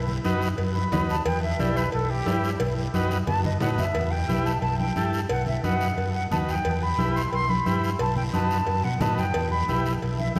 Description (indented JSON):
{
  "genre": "latin, cumbia",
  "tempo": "178 BPM",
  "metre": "4/4",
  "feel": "straight",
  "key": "E harmonic minor",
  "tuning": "A4 = 443 Hz",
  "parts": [
    { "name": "silver concert flute", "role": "melody", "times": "0.0-10.4 s", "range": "G4 to C6", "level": "-31 LUFS", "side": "equal", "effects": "none" },
    { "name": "fingered electric bass", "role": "bass", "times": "0.0-10.4 s", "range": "B1 to B2", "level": "-29 LUFS", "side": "equal", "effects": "none" },
    { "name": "congas", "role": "percussion", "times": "0.1-10.4 s", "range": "none", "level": "-34 LUFS", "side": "equal", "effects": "none" },
    { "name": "overdriven combo organ", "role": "accompaniment", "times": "0.2-10.4 s", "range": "D#4 to B4", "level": "-32 LUFS", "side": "equal", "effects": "none" },
    { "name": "guiro", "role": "percussion", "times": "0.2-10.4 s", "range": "none", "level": "-43 LUFS", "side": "equal", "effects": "none" },
    { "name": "cowbell and timbales", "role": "percussion", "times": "0.6-10.4 s", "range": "none", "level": "-36 LUFS", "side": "equal", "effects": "none" }
  ],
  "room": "wet cathedral reverb, RT60 5.4 s",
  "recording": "recorded in a church or concert hall",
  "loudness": "-25 LUFS",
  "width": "mono",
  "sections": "0.0-4.0 A section; 4.0-10.4 B section",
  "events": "flute solo 0.0-4.0; drum fill 2.6-4.0",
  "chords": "0.0 B; 1.3 Em; 2.6 B; 4.0 Em; 5.3 B; 6.7 Em; 8.0 B7; 9.4 Em"
}